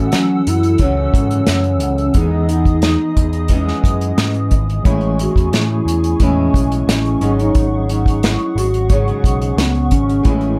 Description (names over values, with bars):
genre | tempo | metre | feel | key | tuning
indie pop, bedroom pop | 89 BPM | 4/4 | straight | unclear | A4 = 441 Hz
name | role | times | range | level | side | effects
hollow clarinet-like synth lead | melody | 0.0-10.6 s | B3 to G#4 | -22 LUFS | equal | analog chorus
flamenco guitar | accompaniment | 0.0-10.6 s | F#2 to E4 | -26 LUFS | equal | subtle chorus, vibrato effect
reed electric piano | accompaniment | 0.0-10.6 s | E3 to D#5 | -27 LUFS | equal | fast tremolo
hollow soft pad | sustained chords | 0.0-10.6 s | G#4 to E6 | -30 LUFS | equal | ensemble chorus, plate reverb
picked electric bass | bass | 0.0-10.6 s | G#1 to F#3 | -21 LUFS | equal | none
unplugged drum kit | drums | 0.1-10.6 s | hi-hat, kick drum, snare drum | -18 LUFS | equal | none
room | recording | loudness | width
light reverb | dark, warm production | -15 LUFS | mono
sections
0.0-10.6 A section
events
none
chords
0.0 F#m7; 2.2 Emaj7; 4.9 Amaj7; 7.2 G#7sus4